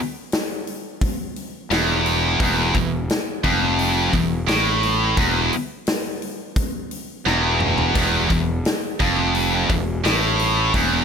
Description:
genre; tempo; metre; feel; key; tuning
heavy metal; 86 BPM; 4/4; straight; unclear; A4 = 441 Hz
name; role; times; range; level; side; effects
big rock drum kit; drums; 0.3-10.9 s; hi-hat, kick drum, snare drum, splash cymbal, toms; -24 LUFS; left 1 dB; none
heavy high-gain guitar; riff; 1.7-11.0 s; E2 to A2; -22 LUFS; left 13 dB; distortion
heavy high-gain guitar; riff; 1.7-11.0 s; E2 to A2; -21 LUFS; right 12 dB; distortion
fuzz fingered electric bass; bass; 1.7-11.0 s; E1 to A1; -24 LUFS; equal; overdrive
room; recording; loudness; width
studio ambience; none; -18 LUFS; side -6 dB against mid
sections
0.0-11.0 A section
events
drum fill 7.3-8.0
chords
none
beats
0.32 1.01 1.70 | 2.39 3.09 3.78 4.48 | 5.17 5.87 6.56 7.26 | 7.96 8.65 9.35 10.04 | 10.74

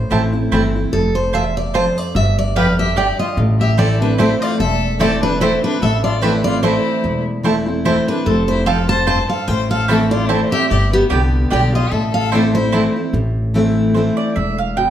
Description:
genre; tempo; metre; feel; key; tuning
bluegrass; 147 BPM; 3/4; swing 55% on 8ths; A minor; A4 = 439 Hz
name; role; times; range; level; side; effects
picked steel-string acoustic guitar; melody; 0.0-12.9 s; G4 to A5; -20 LUFS; right 1 dB; slapback echo
picked steel-string acoustic guitar; accompaniment; 0.0-14.9 s; E2 to G4; -19 LUFS; equal; none
mandolin; stabs; 0.1-14.9 s; B3 to A5; -23 LUFS; right 5 dB; none
upright bass; bass; 0.1-14.9 s; E1 to C2; -19 LUFS; equal; none
rich fiddle; second line; 2.6-12.9 s; B3 to C5; -23 LUFS; left 5 dB; none
room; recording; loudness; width
moderate large studio reverb, RT60 1.3 s; none; -14 LUFS; side -10 dB against mid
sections
0.0-13.1 A section; 13.1-14.9 B section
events
mandolin solo 13.1-14.9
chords
0.0 Am; 0.9 F; 2.2 G; 3.4 Am; 8.3 F; 9.5 Am; 10.7 G; 11.9 Am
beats
0.11 0.52 | 0.93 1.34 1.74 | 2.15 2.56 2.97 | 3.38 3.78 4.19 | 4.60 5.00 5.41 | 5.82 6.23 6.63 | 7.04 7.45 7.86 | 8.26 8.67 9.08 | 9.48 9.89 10.30 | 10.70 11.11 11.52 | 11.92 12.33 12.74 | 13.14 13.55 13.96 | 14.36 14.77

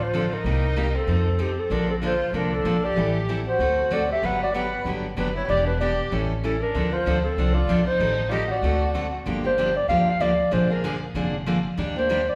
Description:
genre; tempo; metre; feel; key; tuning
acoustic string swing (jazz manouche); 191 BPM; 4/4; swing 59% on 8ths; D minor, G minor from 9.3 s; A4 = 440 Hz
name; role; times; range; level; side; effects
breathy clarinet; melody; 0.0-12.4 s; G4 to F#5; -27 LUFS; equal; none
warm violin; second line; 0.0-9.1 s; C4 to B4; -33 LUFS; equal; none
picked steel-string acoustic guitar; accompaniment; 0.0-12.2 s; C3 to A4; -29 LUFS; equal; none
upright bass; bass; 0.0-12.3 s; E1 to F2; -30 LUFS; equal; none
room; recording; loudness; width
wet recital hall reverb, RT60 1.4 s; recorded in a church or concert hall; -23 LUFS; mono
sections
0.0-9.3 A section; 9.3-12.4 B section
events
none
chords
0.4 Cm7; 1.1 F7; 1.7 Bbmaj7; 3.0 Am7; 3.6 D7; 4.2 Gmaj7; 5.5 Em7; 6.1 A7; 6.7 Dm7; 8.0 Am7b5; 8.6 D7; 9.3 Gm7; 10.5 Bb7; 11.8 Ebmaj7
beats
0.13 | 0.45 0.76 1.07 1.39 | 1.71 2.02 2.33 2.65 | 2.96 3.28 3.60 3.91 | 4.23 4.54 4.86 5.17 | 5.49 5.80 6.12 6.43 | 6.75 7.06 7.38 7.69 | 8.01 8.32 8.63 8.95 | 9.26 9.58 9.89 10.21 | 10.52 10.84 11.15 11.46 | 11.78 12.09

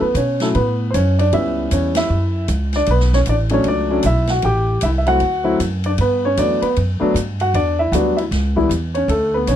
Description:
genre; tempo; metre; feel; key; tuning
jazz piano trio; 154 BPM; 4/4; swing 63% on 8ths; D major; A4 = 440 Hz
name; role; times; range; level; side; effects
warm grand piano; melody; 0.0-9.6 s; E3 to G5; -17 LUFS; left 1 dB; none
upright bass; bass; 0.0-9.6 s; A1 to B2; -19 LUFS; right 1 dB; none
swinging big-band drum kit; drums; 0.1-9.6 s; hi-hat, kick drum, ride cymbal, snare drum; -30 LUFS; left 1 dB; none
room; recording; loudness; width
little or no reverb; none; -15 LUFS; side -10 dB against mid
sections
0.0-9.6 A section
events
band accent 1.9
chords
0.0 Dmaj7 (rootless); 1.3 C#m7b5; 2.1 F#5; 2.9 Bm7; 4.4 Am7; 5.2 D; 6.0 Gmaj7; 7.5 Em7; 8.3 C#m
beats
0.15 0.54 0.93 | 1.32 1.71 2.10 2.49 | 2.88 3.26 3.65 4.04 | 4.43 4.82 5.21 5.60 | 5.99 6.37 6.76 7.15 | 7.54 7.93 8.31 8.70 | 9.09 9.47

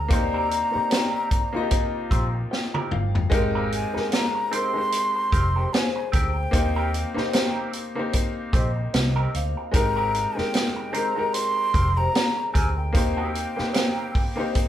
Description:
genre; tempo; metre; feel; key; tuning
lush 1970s-style soul; 75 BPM; 4/4; swing 58% on 16ths; Eb major; A4 = 441 Hz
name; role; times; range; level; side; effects
breathy jazz flute; melody; 0.0-14.7 s; G5 to C6; -26 LUFS; equal; none
warm concert grand piano; accompaniment; 0.0-14.7 s; Ab3 to Bb5; -28 LUFS; left 2 dB; none
vintage muted fingered electric bass; bass; 0.0-13.6 s; F1 to Eb2; -26 LUFS; equal; none
electric guitar through a small old amp; riff; 0.1-14.6 s; C4 to C5; -32 LUFS; right 1 dB; wah
vintage drum kit; drums; 0.1-14.7 s; hi-hat, kick drum, snare drum, toms; -24 LUFS; equal; none
vibraphone with medium hard mallets; texture; 0.1-13.3 s; C5 to Bb5; -36 LUFS; left 3 dB; none
room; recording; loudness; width
moderate studio reverb, RT60 0.6 s; band playing live in one room; -21 LUFS; side -11 dB against mid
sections
0.0-14.7 A section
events
grand piano fill 1.7-3.3; drum fill 2.5-3.3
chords
0.1 Eb6; 3.3 Abmaj9; 6.5 Eb6; 9.7 Abmaj9; 12.9 Eb6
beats
| 0.11 0.92 1.72 2.52 | 3.32 4.13 4.93 5.73 | 6.53 7.33 8.14 8.94 | 9.74 10.54 11.34 12.14 | 12.95 13.75 14.55

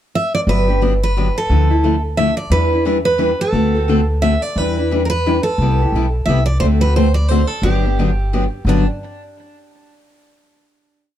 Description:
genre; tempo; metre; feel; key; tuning
acoustic string swing (jazz manouche); 176 BPM; 3/4; swing 59% on 8ths; G major; A4 = 439 Hz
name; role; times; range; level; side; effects
picked steel-string acoustic guitar; melody; 0.2-8.9 s; D4 to E5; -19 LUFS; right 2 dB; tape echo
picked steel-string acoustic guitar; accompaniment; 0.5-8.8 s; G2 to B4; -18 LUFS; left 3 dB; none
upright bass; bass; 0.5-8.8 s; G1 to E2; -17 LUFS; equal; none
room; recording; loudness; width
light reverb; dark, warm production; -14 LUFS; side -11 dB against mid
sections
0.0-0.5 pickup bar; 0.5-8.7 A section; 8.7-9.7 final chord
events
none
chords
0.5 Gmaj7; 1.5 Dmadd9; 2.5 Em7; 3.5 D7; 4.6 Em7; 5.6 Cmaj7; 6.6 D7; 7.6 Gmaj7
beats
0.13 | 0.47 0.81 1.16 | 1.50 1.84 2.18 | 2.52 2.86 3.20 | 3.54 3.89 4.23 | 4.57 4.91 5.25 | 5.59 5.93 6.27 | 6.61 6.95 7.30 | 7.64 7.98 8.32 | 8.66

